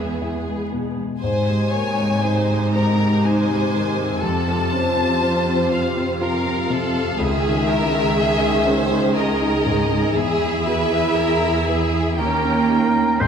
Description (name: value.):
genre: cinematic, emotional film score for orchestra.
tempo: 60 BPM.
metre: 3/4.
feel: rubato.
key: Ab major.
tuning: A4 = 440 Hz.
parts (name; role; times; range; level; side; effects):
rich studio violin section; melody; 0.0-13.3 s; Eb5 to Bb5; -25 LUFS; left 3 dB; none.
clear studio violin section; second line; 0.0-13.3 s; G4 to Db5; -25 LUFS; left 1 dB; none.
warm grand piano; accompaniment; 0.0-13.3 s; Db2 to C5; -24 LUFS; left 3 dB; none.
warm studio viola section; accompaniment; 0.0-13.3 s; C3 to Bb4; -24 LUFS; right 2 dB; none.
rich studio cello section; bass; 0.0-13.3 s; Db2 to C4; -23 LUFS; right 2 dB; none.
warm oboe; second line; 12.2-13.3 s; Bb4 to C5; -21 LUFS; right 1 dB; none.
warm studio double bass section; bass; 13.2-13.3 s; Ab1; -29 LUFS; right 3 dB; none.
room: moderate scoring stage reverb, RT60 2.0 s.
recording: none.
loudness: -17 LUFS.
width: side -7 dB against mid.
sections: 0.0-13.2 A section.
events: none.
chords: 0.0 E; 1.2 Ab; 4.2 F; 7.2 Dbmadd9; 10.2 E; 12.2 Eb7.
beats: 0.20 | 1.21 2.23 3.23 | 4.23 5.22 6.21 | 7.20 8.18 9.16 | 10.16 11.17 12.19 | 13.22.